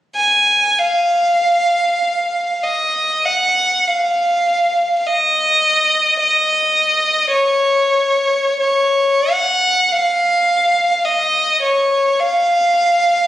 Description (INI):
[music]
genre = classical, free, expressive piece for unaccompanied violin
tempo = 40-55 BPM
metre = 4/4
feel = rubato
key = unclear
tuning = A4 = 440 Hz
[part]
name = clear violin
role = solo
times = 0.2-13.3 s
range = Db5 to Ab5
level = -13 LUFS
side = equal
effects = none
[sound]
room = moderate recital hall reverb, RT60 1.4 s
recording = recorded on a phone in the room, studio reverb, compression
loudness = -13 LUFS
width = side -13 dB against mid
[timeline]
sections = 0.2-13.3 A section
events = none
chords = none